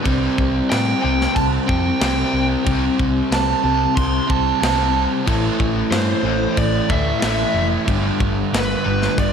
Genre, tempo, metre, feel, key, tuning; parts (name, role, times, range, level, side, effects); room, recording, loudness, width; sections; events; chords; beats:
hard rock; 92 BPM; 4/4; straight; A4 = 442 Hz
overdriven semi-hollow guitar; riff; 0.0-9.3 s; G2 to C4; -23 LUFS; left 9 dB; harmonic tremolo, slapback echo
sludgy distorted guitar; riff; 0.0-9.3 s; G2 to C4; -23 LUFS; right 9 dB; overdrive
picked electric bass; bass; 0.1-9.3 s; F1 to A2; -23 LUFS; equal
tight metal drum kit; drums; 0.1-9.3 s; crash cymbal, kick drum, snare drum; -23 LUFS; equal
biting lead guitar; melody; 0.7-9.3 s; B4 to C6; -23 LUFS; right 3 dB; overdrive
moderate lush hall reverb, RT60 1.9 s, small room ambience; big arena sound; -16 LUFS; side -7 dB against mid
0.0-9.3 A section
0.1 C5; 5.3 Am; 7.9 G
| 0.06 0.71 1.36 2.01 | 2.66 3.32 3.97 4.62 | 5.27 5.92 6.57 7.22 | 7.87 8.52 9.17